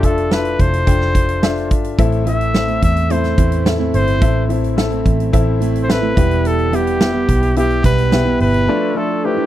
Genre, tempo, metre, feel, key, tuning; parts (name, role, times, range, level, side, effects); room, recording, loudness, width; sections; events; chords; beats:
piano-driven pop; 108 BPM; 4/4; straight; A minor; A4 = 440 Hz
clear trumpet; melody; 0.0-9.5 s; G4 to E5; -20 LUFS; left 1 dB
clear grand piano; accompaniment; 0.0-9.5 s; A2 to G5; -20 LUFS; left 5 dB
vintage muted picked electric bass; bass; 0.0-8.7 s; E1 to E2; -18 LUFS; equal
huge arena drum kit; drums; 0.0-8.7 s; hi-hat, kick drum, snare drum; -18 LUFS; right 1 dB
fingerpicked plugged-in steel-string acoustic guitar; riff; 2.0-9.5 s; E2 to E4; -21 LUFS; right 8 dB
small room reverb; dry, close 1970s-style studio recording; -13 LUFS; side -13 dB against mid
0.0-9.5 A section
break 8.7-9.5
0.0 Dmadd9/F; 2.0 Am; 6.2 Em; 8.7 Dmadd9/F
0.31 0.87 1.43 | 1.99 2.55 3.10 3.66 | 4.22 4.78 5.33 5.89 | 6.45 7.01 7.57 8.12 | 8.68 9.24